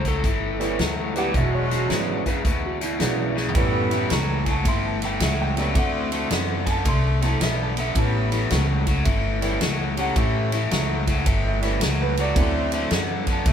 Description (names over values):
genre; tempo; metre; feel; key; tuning
electric blues shuffle; 109 BPM; 4/4; swing 66% on 8ths; A mixolydian; A4 = 439 Hz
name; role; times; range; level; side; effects
electric slide guitar; melody; 0.0-1.3 s; A4; -33 LUFS; left 4 dB; none
upright bass; bass; 0.0-13.5 s; E1 to F#2; -25 LUFS; equal; none
swinging big-band drum kit; drums; 0.0-13.5 s; hi-hat, kick drum, ride cymbal, snare drum, toms; -25 LUFS; equal; none
overdriven electric guitar; riff; 0.1-13.5 s; E2 to B3; -26 LUFS; left 4 dB; none
bright upright piano; accompaniment; 0.6-13.5 s; F#3 to C6; -29 LUFS; right 6 dB; none
dark horn section; stabs; 1.1-13.1 s; F#3 to C#5; -28 LUFS; right 1 dB; none
clean lap steel guitar; second line; 1.2-3.5 s; E4 to F#5; -31 LUFS; right 7 dB; none
room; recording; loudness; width
light reverb; band playing live in one room; -20 LUFS; side -8 dB against mid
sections
0.0-3.6 A section; 3.6-13.5 B section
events
drum fill 3.3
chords
0.0 A9; 1.3 E9; 3.6 A9; 5.8 D9; 8.0 A9; 12.4 D9